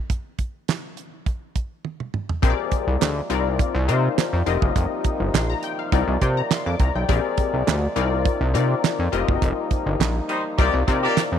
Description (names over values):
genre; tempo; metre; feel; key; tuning
early-eighties boogie funk; 103 BPM; 4/4; straight; C minor; A4 = 437 Hz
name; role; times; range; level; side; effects
damped 70s drum kit; drums; 0.1-11.3 s; handclaps, hi-hat, kick drum, snare drum, toms; -23 LUFS; right 3 dB; none
funky polysynth comp; accompaniment; 2.4-11.4 s; C4 to D6; -25 LUFS; left 14 dB; chorus
clear French horn section; sustained chords; 2.4-11.4 s; C3 to D5; -29 LUFS; equal; none
chorused synth bass; bass; 2.4-11.4 s; F1 to C3; -22 LUFS; equal; none
warm horn section; second line; 10.3-11.2 s; G3 to D5; -24 LUFS; left 1 dB; none
room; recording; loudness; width
light reverb, studio reverb; 1960s-style stereo; -20 LUFS; side -9 dB against mid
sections
0.0-2.4 A section; 2.4-11.4 B section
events
drum fill 1.8-2.4; band accent 9.4-11.4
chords
0.0 N.C.; 2.4 Bb13; 3.3 Cm11; 4.5 F9sus4; 5.9 Cm11; 7.1 Bb13; 8.0 Cm11; 9.1 F9sus4; 10.6 Cm11